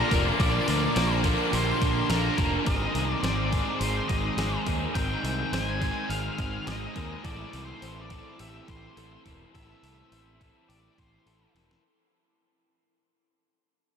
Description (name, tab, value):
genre	rock, shoegaze and dream pop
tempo	105 BPM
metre	4/4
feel	straight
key	unclear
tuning	A4 = 440 Hz
part	octave-fuzz lead guitar	melody	0.0-11.5 s	Bb4 to Ab5	-34 LUFS	left 2 dB	distortion, diffuse ambient delay
part	shimmering ambient pad	sustained chords	0.0-2.6 s	Bb4 to C6	-37 LUFS	left 1 dB	chorus, built-in reverb, phaser
part	direct-recorded clean electric guitar	arpeggios	0.0-11.8 s	G4 to C5	-39 LUFS	left 6 dB	ensemble chorus, diffuse ambient delay
part	crunchy overdriven guitar	riff	0.0-11.8 s	Ab2 to Bb4	-33 LUFS	left 7 dB	analog chorus
part	crunchy overdriven guitar	riff	0.0-11.8 s	Ab2 to Bb4	-33 LUFS	right 8 dB	reverse reverb
part	distorted electric guitar	riff	0.0-2.7 s	Bb2 to Bb3	-34 LUFS	left 1 dB	distortion
part	growling fingered electric bass	bass	0.1-11.7 s	E1 to Eb2	-31 LUFS	equal	overdrive
part	clean 12-bit digital drum machine	drums	0.1-11.8 s	hi-hat, kick drum, snare drum	-32 LUFS	equal	none
room	wet huge ambient reverb, RT60 6.6 s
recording	dreamy mix soaked in reverb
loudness	-24 LUFS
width	side -7 dB against mid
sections	0.0-11.8 A section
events	fade-out 0.0-11.8; drum fill 11.5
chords	0.0 Bbadd9; 2.7 Ab; 7.2 Am7